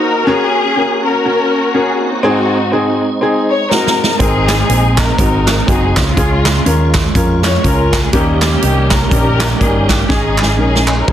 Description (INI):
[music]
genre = uptempo gospel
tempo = 122 BPM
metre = 4/4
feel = swing 58% on 8ths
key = unclear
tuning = A4 = 440 Hz
[part]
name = muted studio string section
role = melody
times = 0.0-11.1 s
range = Ab3 to Db5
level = -16 LUFS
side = left 2 dB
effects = slapback echo
[part]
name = warm upright piano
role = accompaniment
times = 0.0-11.1 s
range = Ab2 to C5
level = -17 LUFS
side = left 1 dB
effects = none
[part]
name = tonewheel organ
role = sustained chords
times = 0.0-11.1 s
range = Eb3 to G4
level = -22 LUFS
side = right 3 dB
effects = slow rotary speaker, chorus vibrato
[part]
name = swinging big-band drum kit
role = drums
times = 3.7-11.1 s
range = hi-hat, kick drum, snare drum, toms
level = -16 LUFS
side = right 1 dB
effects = none
[part]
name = hollow-body short-scale fingered electric bass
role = bass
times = 4.2-11.1 s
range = Gb1 to F2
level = -15 LUFS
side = equal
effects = none
[part]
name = group handclap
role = percussion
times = 4.5-11.0 s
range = none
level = -22 LUFS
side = right 2 dB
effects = none
[sound]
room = light reverb, small room ambience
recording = dense, heavily limited modern master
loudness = -10 LUFS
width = side -10 dB against mid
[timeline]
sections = 0.0-11.1 A section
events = drum fill 3.7-4.2, 10.1-11.1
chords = 0.3 Gb; 2.2 Ab; 6.2 Db; 8.1 Eb7; 10.1 Absus4